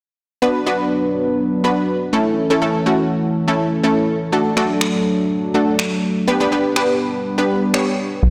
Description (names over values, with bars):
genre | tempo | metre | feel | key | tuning
dance-pop | 123 BPM | 4/4 | straight | B minor | A4 = 440 Hz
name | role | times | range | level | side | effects
analog pluck | accompaniment | 0.4-8.1 s | A3 to C#5 | -20 LUFS | equal | chorus
warm analog pad | sustained chords | 0.4-8.3 s | D3 to B4 | -23 LUFS | equal | chorus
electronic finger snaps | drums | 4.6-7.9 s | none | -27 LUFS | equal | overdrive, soft clipping on snare
plucky analog bass | bass | 8.2-8.3 s | B1 | -13 LUFS | equal | none
room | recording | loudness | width
moderate lush hall reverb, RT60 1.9 s | blown-out, overdriven recording, overdrive | -18 LUFS | mono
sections
0.4-8.2 A section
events
none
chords
0.4 Bm; 2.1 A; 4.3 D; 6.3 G